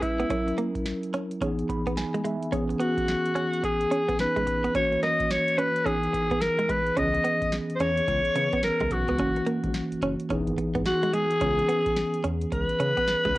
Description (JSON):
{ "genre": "R&B, new jack swing", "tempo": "108 BPM", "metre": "4/4", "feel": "swing 62% on 16ths", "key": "unclear", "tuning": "A4 = 439 Hz", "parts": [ { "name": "raspy alto saxophone", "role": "melody", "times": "0.0-13.4 s", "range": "E4 to D#5", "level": "-25 LUFS", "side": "left 1 dB", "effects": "cassette tape" }, { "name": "tine electric piano", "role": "accompaniment", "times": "0.0-13.4 s", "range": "D#3 to B5", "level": "-29 LUFS", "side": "equal", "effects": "medium stereo tremolo, cassette tape" }, { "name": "direct-recorded clean electric guitar", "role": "riff", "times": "0.0-13.4 s", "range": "G#3 to C#4", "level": "-30 LUFS", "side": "right 3 dB", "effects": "wide subtle chorus, cassette tape" }, { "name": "booming analog drum machine", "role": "drums", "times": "0.0-13.4 s", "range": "hi-hat, kick drum, snare drum", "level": "-33 LUFS", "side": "equal", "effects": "overdrive, cassette tape" }, { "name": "smooth synth bass", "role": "bass", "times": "7.0-13.4 s", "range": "E1 to C#3", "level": "-31 LUFS", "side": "equal", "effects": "none" } ], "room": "moderate studio reverb, RT60 0.5 s", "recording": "home recording on cassette", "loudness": "-23 LUFS", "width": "side -18 dB against mid", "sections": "0.0-13.4 A section", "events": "tine electric piano fill 1.4-2.5", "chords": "0.3 F#7; 1.4 Emaj7; 4.7 F#7; 5.9 Emaj7; 7.0 C#m7; 9.2 F#7; 10.3 Emaj7; 11.4 C#m7", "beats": "| 0.30 0.86 1.41 1.97 | 2.52 3.08 3.63 4.19 | 4.75 5.30 5.86 6.41 | 6.97 7.52 8.08 8.63 | 9.19 9.75 10.30 10.86 | 11.41 11.97 12.52 13.08" }